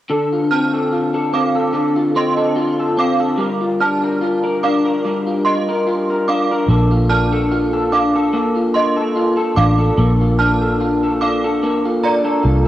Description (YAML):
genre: indie pop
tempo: 73 BPM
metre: 4/4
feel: swing 55% on 16ths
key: Bb major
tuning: A4 = 441 Hz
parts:
  - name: electric guitar through a small old amp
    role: accompaniment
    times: 0.1-12.7 s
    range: D3 to Bb4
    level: -16 LUFS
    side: left 1 dB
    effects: ensemble chorus, warbly pitch drift
  - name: synth chime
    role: second line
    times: 0.5-12.4 s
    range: D5 to F6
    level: -20 LUFS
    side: right 3 dB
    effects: ensemble chorus, phaser, tape echo
  - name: vintage muted fingered electric bass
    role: bass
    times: 6.7-12.7 s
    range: A1 to C2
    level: -17 LUFS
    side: equal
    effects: none
room: moderate small room reverb, RT60 0.6 s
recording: home recording on cassette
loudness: -14 LUFS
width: side -13 dB against mid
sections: 0.1-12.7 A section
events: none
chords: 0.1 Dm7; 3.4 Gm7; 6.7 Bbmaj7